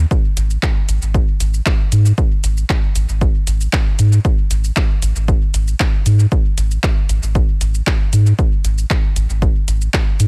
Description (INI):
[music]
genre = dub techno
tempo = 116 BPM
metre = 4/4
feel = straight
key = unclear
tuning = A4 = 443 Hz
[part]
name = pure sine sub bass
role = bass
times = 0.0-10.3 s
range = G#1 to G#2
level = -17 LUFS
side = equal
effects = sidechain pumping
[part]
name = deep house drum kit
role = drums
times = 0.1-10.3 s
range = handclaps, hi-hat, shaker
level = -26 LUFS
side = equal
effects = dub echo
[part]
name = electronic kick drum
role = drums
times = 0.1-10.0 s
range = none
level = -18 LUFS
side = equal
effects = none
[sound]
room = digital ambience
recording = none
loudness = -16 LUFS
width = mono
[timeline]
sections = 0.0-10.3 A section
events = none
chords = none